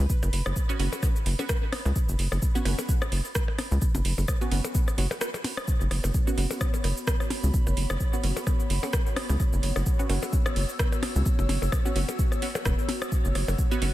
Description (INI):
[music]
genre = minimal techno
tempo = 129 BPM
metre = 4/4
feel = swing 56% on 16ths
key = unclear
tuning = A4 = 440 Hz
[part]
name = rubbery square bass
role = bass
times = 0.0-13.9 s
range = E1 to C#2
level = -25 LUFS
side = equal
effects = sidechain pumping
[part]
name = airy breathy pad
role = texture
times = 0.0-13.9 s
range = B3 to E6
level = -36 LUFS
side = left 1 dB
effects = chorus, sidechain pumping
[part]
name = pulsing gated texture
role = texture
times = 0.0-5.7 s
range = B4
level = -47 LUFS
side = left 1 dB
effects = none
[part]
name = electronic kick drum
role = drums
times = 0.1-13.7 s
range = none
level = -26 LUFS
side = equal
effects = studio ambience
[part]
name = garage drum kit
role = drums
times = 0.1-13.9 s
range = cabasa, hi-hat, rim click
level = -34 LUFS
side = right 2 dB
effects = overdrive, studio ambience
[part]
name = electronic percussion blips and rim click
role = percussion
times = 0.2-13.6 s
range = none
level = -35 LUFS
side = left 2 dB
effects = studio ambience, diffuse ambient delay
[part]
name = filtered dub chord stab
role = stabs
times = 0.7-13.9 s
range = B3 to F#4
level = -35 LUFS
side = right 2 dB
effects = chorus, diffuse ambient delay
[sound]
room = digital ambience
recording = none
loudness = -24 LUFS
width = side -15 dB against mid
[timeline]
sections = 0.0-5.7 A section; 5.7-13.9 A section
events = drop 0.0-5.7, 5.7-13.9; break 5.2-5.7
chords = 0.0 F#sus4